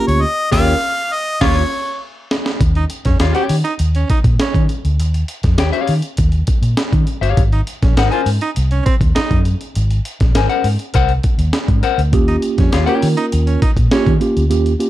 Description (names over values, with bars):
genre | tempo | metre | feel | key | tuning
funk | 101 BPM | 4/4 | straight | unclear | A4 = 440 Hz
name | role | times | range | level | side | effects
bright harmonica | melody | 0.0-2.0 s | Db5 to F5 | -18 LUFS | equal | none
mellow tine electric piano | stabs | 0.0-1.6, 12.1-14.9 s | Bb3 to Bb4 | -18 LUFS | right 3 dB | slow stereo tremolo
vintage muted fingered electric bass | bass | 0.1-14.7 s | G1 to Eb3 | -16 LUFS | equal | none
breakbeat sampler-style drum kit | drums | 0.1-14.9 s | crash cymbal, hi-hat, kick drum, snare drum | -17 LUFS | equal | none
clear baritone saxophone | second line | 0.5-14.2 s | C4 to G4 | -23 LUFS | right 5 dB | none
clean electric guitar | accompaniment | 0.5-13.1 s | G4 to Ab5 | -20 LUFS | left 10 dB | none
room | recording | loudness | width
little or no reverb | dark, warm production | -13 LUFS | side -14 dB against mid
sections
0.0-2.6 A section; 2.6-14.9 B section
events
harmonica solo 0.0-2.6; band accent 0.2-2.6; drum fill 1.4-2.6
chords
0.0 Eb9; 7.4 Ab9; 12.1 Eb9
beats
| 0.23 0.82 1.42 2.02 | 2.61 3.21 3.80 4.39 | 4.99 5.59 6.18 6.78 | 7.37 7.97 8.56 9.16 | 9.75 10.35 10.94 11.54 | 12.13 12.72 13.32 13.91 | 14.51